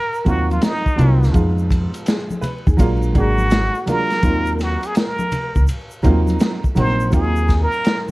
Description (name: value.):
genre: hip hop, jazz-hop.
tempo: 83 BPM.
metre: 4/4.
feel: swing 66% on 16ths.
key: Eb dorian.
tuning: A4 = 442 Hz.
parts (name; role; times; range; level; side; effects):
trumpet with plunger mute; melody; 0.0-8.1 s; Eb4 to C5; -22 LUFS; equal; plate reverb.
egg shaker and congas; percussion; 0.1-8.1 s; none; -27 LUFS; left 1 dB; none.
clear upright piano; accompaniment; 0.2-8.1 s; F3 to Cb5; -22 LUFS; right 2 dB; none.
upright bass; bass; 0.3-7.6 s; Ab1 to F2; -17 LUFS; equal; none.
crunchy breakbeat drum kit; drums; 0.3-8.1 s; hi-hat, kick drum, ride cymbal, snare drum; -20 LUFS; equal; none.
room: light reverb.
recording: dark, warm production, vinyl crackle.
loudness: -15 LUFS.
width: side -20 dB against mid.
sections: 0.0-8.1 A section.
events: muted trumpet solo 0.0-8.1.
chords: 0.0 Ebm69; 1.3 Fm7b5; 2.8 Bb7b13; 4.2 Ebm69.